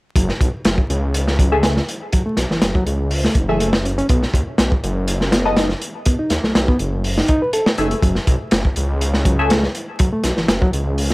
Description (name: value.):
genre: breakbeat, breaks.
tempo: 122 BPM.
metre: 4/4.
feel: swing 53% on 16ths.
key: F# dorian.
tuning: A4 = 439 Hz.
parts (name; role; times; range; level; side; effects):
reed electric piano; riff; 0.2-11.1 s; E3 to B4; -22 LUFS; equal; none.
detuned saw bass; bass; 0.2-11.1 s; F#1 to D#2; -20 LUFS; equal; tube saturation.
crunchy breakbeat drum kit; drums; 0.2-11.1 s; hi-hat, kick drum, snare drum; -18 LUFS; equal; none.
band-passed chord stab; stabs; 1.5-9.6 s; A3 to E5; -22 LUFS; left 2 dB; phaser, lush chorus, dub echo.
room: little or no reverb.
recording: vinyl crackle.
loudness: -15 LUFS.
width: side -21 dB against mid.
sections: 0.2-11.1 A section.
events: none.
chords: 0.2 F#m9; 4.1 B7; 8.0 F#m9.